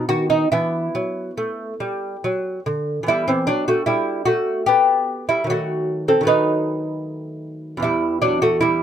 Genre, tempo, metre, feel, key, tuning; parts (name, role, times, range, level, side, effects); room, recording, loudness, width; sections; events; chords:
classical, baroque-style dance for lute; 69-78 BPM; 3/4; rubato; E minor; A4 = 441 Hz
lute; solo; 0.0-8.8 s; E2 to B4; -18 LUFS; equal
light reverb; close, detailed microphones; -18 LUFS; side -9 dB against mid
0.0-3.1 A section; 3.1-8.8 B section
0.0 B; 0.5 Em; 5.5 B7/D#; 7.8 Em